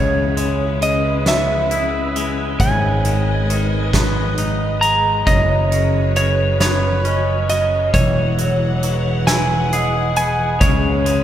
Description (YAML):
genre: post-rock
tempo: 45 BPM (dotted quarters)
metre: 6/8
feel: straight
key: unclear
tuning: A4 = 440 Hz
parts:
  - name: electric slide guitar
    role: melody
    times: 0.0-11.2 s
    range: C#5 to A#5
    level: -20 LUFS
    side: right 1 dB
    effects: none
  - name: warm studio string section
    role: sustained chords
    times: 0.0-11.2 s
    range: E3 to F#5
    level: -27 LUFS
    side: left 2 dB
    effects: none
  - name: twangy electric guitar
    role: arpeggios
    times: 0.0-11.2 s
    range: F#2 to G#4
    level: -24 LUFS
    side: left 2 dB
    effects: none
  - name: vibraphone with medium mallets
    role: arpeggios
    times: 0.0-11.2 s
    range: B4 to D#6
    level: -27 LUFS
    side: right 2 dB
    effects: none
  - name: modern bright picked electric bass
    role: bass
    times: 0.0-11.2 s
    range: E1 to C#2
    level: -20 LUFS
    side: equal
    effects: none
  - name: huge arena drum kit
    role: drums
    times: 0.4-11.2 s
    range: hi-hat, kick drum, snare drum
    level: -22 LUFS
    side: equal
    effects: none
room: wet church reverb, RT60 3.9 s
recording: recorded in a church or concert hall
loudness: -15 LUFS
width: side -11 dB against mid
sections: 0.0-11.2 A section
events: none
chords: 0.0 C#m7; 2.6 G#m; 5.3 F#sus4; 7.9 Eadd9; 10.6 C#m7